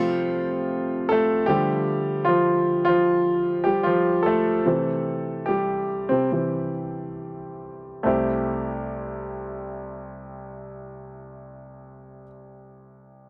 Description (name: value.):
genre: pop.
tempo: 67-77 BPM.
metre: 4/4.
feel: straight.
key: C major.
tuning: A4 = 441 Hz.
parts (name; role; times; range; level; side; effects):
bright concert grand piano; accompaniment; 0.0-13.3 s; C2 to A4; -25 LUFS; equal; none.
picked steel-string acoustic guitar; arpeggios; 0.0-2.0 s; A3 to A4; -33 LUFS; equal; none.
room: light reverb.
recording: dry, close 1970s-style studio recording.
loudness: -23 LUFS.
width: mono.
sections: 0.0-8.1 A section; 8.1-11.6 B section.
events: grand piano solo 0.0-8.1; slowing down 1.5-8.1.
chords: 0.0 F/C; 1.5 Dm; 4.7 C6.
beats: 0.70 | 1.48 2.26 3.05 3.85 | 4.65 5.48 6.32 7.17 | 8.06 8.95 9.85 10.74.